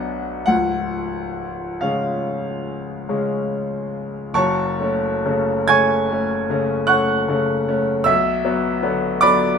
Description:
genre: classical, romantic nocturne for solo piano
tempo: 43-53 BPM (dotted quarters)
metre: 9/8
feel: rubato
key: F# minor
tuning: A4 = 439 Hz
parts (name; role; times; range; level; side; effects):
- bright grand piano; solo; 0.0-9.6 s; C#1 to G#6; -18 LUFS; equal; none
room: moderate large studio reverb, RT60 0.8 s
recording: minimal, uncompressed stereo recording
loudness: -18 LUFS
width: side -6 dB against mid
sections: 0.0-4.3 A section; 4.3-9.6 B section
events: none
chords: 0.5 C#; 4.3 F#m; 8.1 Bm

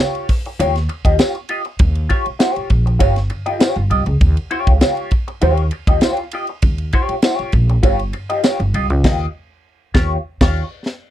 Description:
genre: funk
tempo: 99 BPM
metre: 4/4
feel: straight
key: unclear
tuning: A4 = 439 Hz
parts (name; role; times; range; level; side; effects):
- electric guitar through a small old amp; accompaniment; 0.0-10.6 s; F4 to Eb5; -19 LUFS; left 1 dB; wah, wide subtle chorus
- crisp fusion drum kit; drums; 0.1-11.0 s; crash cymbal, hi-hat, kick drum, ride cymbal, snare drum; -15 LUFS; equal; none
- upright bass; bass; 0.6-10.6 s; G1 to Eb2; -17 LUFS; equal; none
- tambourine; percussion; 1.2-8.6 s; none; -31 LUFS; equal; none
room: little or no reverb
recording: dry, close 1970s-style studio recording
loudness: -14 LUFS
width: side -12 dB against mid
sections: 0.0-11.1 A section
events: band accent 9.0-11.1; drum fill 10.9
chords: 0.0 Eb9

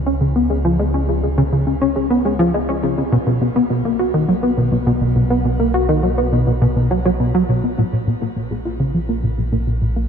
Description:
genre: ambient, sequencer-driven space music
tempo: 103 BPM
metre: 4/4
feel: straight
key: Bb phrygian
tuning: A4 = 440 Hz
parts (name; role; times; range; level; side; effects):
- analog drone; bass; 0.0-10.1 s; Bb1 to Db2; -23 LUFS; equal; chorus
- plucky analog bass; riff; 0.1-10.0 s; Bb2 to F#4; -16 LUFS; equal; wide subtle chorus, ping-pong delay, shimmer reverb
room: moderate plate reverb, RT60 3.2 s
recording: dark, warm production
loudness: -15 LUFS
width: side -7 dB against mid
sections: 0.0-7.8 A section; 7.8-10.1 A section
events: none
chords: 0.0 Db7; 3.1 B5; 7.8 Bb5

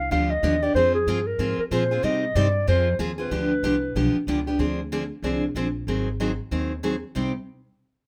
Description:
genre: acoustic string swing (jazz manouche)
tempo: 188 BPM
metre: 4/4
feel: swing 61% on 8ths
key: C minor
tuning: A4 = 440 Hz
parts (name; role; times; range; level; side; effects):
- breathy clarinet; melody; 0.0-4.2 s; Ab4 to F5; -26 LUFS; equal; none
- upright bass; bass; 0.0-7.3 s; Ab1 to C3; -30 LUFS; equal; none
- picked steel-string acoustic guitar; accompaniment; 0.1-7.3 s; C3 to Ab4; -28 LUFS; equal; none
room: moderate club reverb, RT60 0.7 s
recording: none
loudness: -24 LUFS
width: mono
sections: 0.0-4.6 A section; 4.6-7.2 B section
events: none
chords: 0.0 G7; 0.8 Fm; 2.0 Cm; 2.7 Fm; 3.3 G7; 4.6 Dm7b5; 5.9 Ab7; 7.2 Cm

